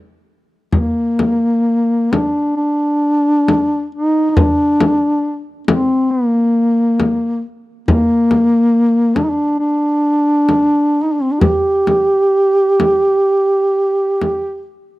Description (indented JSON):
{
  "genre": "caucasian folk, Caucasian lament",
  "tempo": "67 BPM",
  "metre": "4/4",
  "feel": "uneven beats, rubato",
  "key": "G minor",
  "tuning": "A4 = 440 Hz",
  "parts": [
    { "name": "dark duduk", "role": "melody", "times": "0.7-14.7 s", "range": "Bb3 to G4", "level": "-13 LUFS", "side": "equal", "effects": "none" },
    { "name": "frame drum", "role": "percussion", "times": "0.7-14.4 s", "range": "none", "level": "-16 LUFS", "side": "left 2 dB", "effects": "none" }
  ],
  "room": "studio reverb",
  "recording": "dry, close 1970s-style studio recording",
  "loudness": "-12 LUFS",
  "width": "side -18 dB against mid",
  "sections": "0.7-15.0 A section",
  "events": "none",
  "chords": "none",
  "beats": "| 0.72 1.64 2.58 3.48 | 4.37 5.24 6.11 6.99 | 7.88 8.73 9.59 10.48 | 11.41 12.33 13.26 14.21"
}